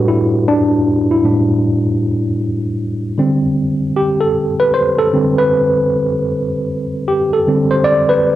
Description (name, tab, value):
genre	R&B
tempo	77 BPM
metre	4/4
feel	swing 64% on 16ths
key	unclear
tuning	A4 = 441 Hz
part	tine electric piano	solo	0.0-8.4 s	A2 to D5	-13 LUFS	equal	overdrive, fast stereo tremolo, cassette tape
room	light reverb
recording	home recording on cassette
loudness	-13 LUFS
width	side -13 dB against mid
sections	0.0-8.4 A section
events	tine electric piano solo 0.0-8.4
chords	0.0 A7sus4; 3.2 D7sus4